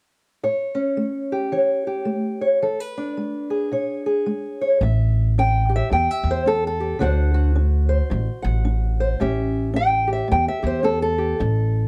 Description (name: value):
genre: acoustic country blues, solo or duo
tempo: 109 BPM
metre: 4/4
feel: swing 60% on 8ths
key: A mixolydian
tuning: A4 = 438 Hz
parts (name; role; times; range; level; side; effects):
- fingerpicked old ladder-braced acoustic guitar; melody; 0.4-11.9 s; A2 to G5; -24 LUFS; equal; none
- upright bass; bass; 4.8-11.9 s; A1 to E2; -23 LUFS; equal; none
room: light reverb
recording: heard from further back in the room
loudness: -21 LUFS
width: mono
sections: 0.4-4.8 A section; 4.8-11.9 B section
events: none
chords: 0.4 A7; 2.6 E7; 4.8 A7; 7.0 D7; 9.2 A7